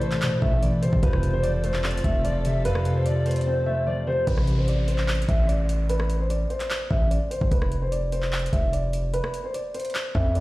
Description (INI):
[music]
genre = hip hop, trap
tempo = 148 BPM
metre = 4/4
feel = half-time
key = A minor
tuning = A4 = 439 Hz
[part]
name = warm grand piano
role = melody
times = 0.0-10.4 s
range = B4 to E5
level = -28 LUFS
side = right 1 dB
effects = low-pass filter, tape echo
[part]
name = mellow polished pan flute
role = second line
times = 0.0-4.3 s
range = C5 to F5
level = -33 LUFS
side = left 3 dB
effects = tape echo
[part]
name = concert harp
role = accompaniment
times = 0.0-7.0 s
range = F2 to C4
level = -27 LUFS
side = equal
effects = low-pass filter
[part]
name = dark chamber string section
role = sustained chords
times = 0.0-4.2 s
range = F3 to A4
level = -36 LUFS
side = right 2 dB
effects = none
[part]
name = trap drum kit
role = drums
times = 0.0-10.4 s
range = handclaps, hi-hat, kick drum, rim click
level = -27 LUFS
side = equal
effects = none
[part]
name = distorted 808-style bass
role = bass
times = 0.4-10.4 s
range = F1 to F2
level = -25 LUFS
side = equal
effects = distortion
[part]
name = mellow brass ensemble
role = stabs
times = 1.0-1.3 s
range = C2 to F3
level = -38 LUFS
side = left 2 dB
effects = tape echo
[part]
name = downlifter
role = sound effects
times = 4.3-7.5 s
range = none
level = -42 LUFS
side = equal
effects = none
[sound]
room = studio reverb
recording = played on a big sound system in a bare room, stone room reverb, vinyl crackle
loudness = -22 LUFS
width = side -18 dB against mid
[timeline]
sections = 0.0-4.3 A section; 4.3-10.4 B section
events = drums muted 3.5-4.3; filter sweep 4.3-10.4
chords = 0.0 Amadd9; 1.0 F; 4.3 Am; 7.5 F5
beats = 0.22 0.62 | 1.03 1.43 1.84 2.24 | 2.65 3.06 3.46 3.87 | 4.27 4.68 5.08 5.49 | 5.89 6.30 6.70 7.11 | 7.51 7.92 8.32 8.73 | 9.14 9.54 9.95 10.35